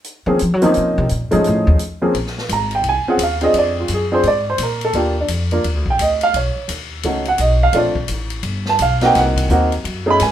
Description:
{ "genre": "jazz piano trio", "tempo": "171 BPM", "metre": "4/4", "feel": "swing 63% on 8ths", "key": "Bb minor", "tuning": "A4 = 440 Hz", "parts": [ { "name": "swinging big-band drum kit", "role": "drums", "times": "0.0-10.3 s", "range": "hi-hat, kick drum, ride cymbal, snare drum", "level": "-27 LUFS", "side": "left 4 dB", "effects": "none" }, { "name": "warm baby grand piano", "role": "melody", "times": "0.3-10.3 s", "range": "F3 to Cb6", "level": "-16 LUFS", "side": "right 1 dB", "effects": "none" }, { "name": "upright bass", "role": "bass", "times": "0.3-10.3 s", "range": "G1 to Gb3", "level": "-20 LUFS", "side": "equal", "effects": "none" } ], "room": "moderate studio reverb, RT60 0.8 s", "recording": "minimal, uncompressed stereo recording", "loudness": "-15 LUFS", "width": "side -11 dB against mid", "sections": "0.0-2.1 A section; 2.1-10.3 B section", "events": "upright bass solo 0.0-2.1", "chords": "0.0 Bbm9; 1.4 F7alt; 2.1 Bb7sus2; 3.5 Bb9; 4.9 Ebmaj9; 6.3 Badd9; 7.7 Bbmaj7; 8.4 G; 9.1 Cm7b5" }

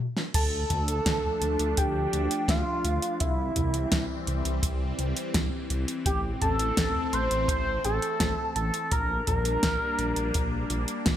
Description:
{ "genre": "synthwave", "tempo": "84 BPM", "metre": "4/4", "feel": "straight", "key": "D minor", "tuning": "A4 = 440 Hz", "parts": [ { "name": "pop drum kit", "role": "drums", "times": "0.2-11.2 s", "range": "crash cymbal, hi-hat, snare drum, toms", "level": "-29 LUFS", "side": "equal", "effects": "overdrive" }, { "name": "expressive portamento lead", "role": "melody", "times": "0.3-10.7 s", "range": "E4 to C5", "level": "-30 LUFS", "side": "equal", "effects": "chorus, ping-pong delay" }, { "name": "FM electric piano with soft pad layer", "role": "second line", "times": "0.3-10.7 s", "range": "E5 to C6", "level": "-36 LUFS", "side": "equal", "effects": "chorus, ping-pong delay" }, { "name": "phased analog pad", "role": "sustained chords", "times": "0.8-11.2 s", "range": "E3 to D4", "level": "-34 LUFS", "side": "equal", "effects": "phaser, chorus" }, { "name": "dark detuned saw bass", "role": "bass", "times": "0.3-11.2 s", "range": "A1 to D2", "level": "-30 LUFS", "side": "equal", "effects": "sidechain pumping" }, { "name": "kick drum", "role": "drums", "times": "0.3-11.2 s", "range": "none", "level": "-31 LUFS", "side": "equal", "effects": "none" } ], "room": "moderate plate reverb, RT60 2.7 s", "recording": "bright 1980s-style digital production", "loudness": "-25 LUFS", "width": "side -11 dB against mid", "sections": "0.3-11.2 A section", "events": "drum fill 0.0-0.3; stop 0.0-0.3", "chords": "0.3 Dm; 3.2 C; 6.1 Am; 8.9 Gm/Bb" }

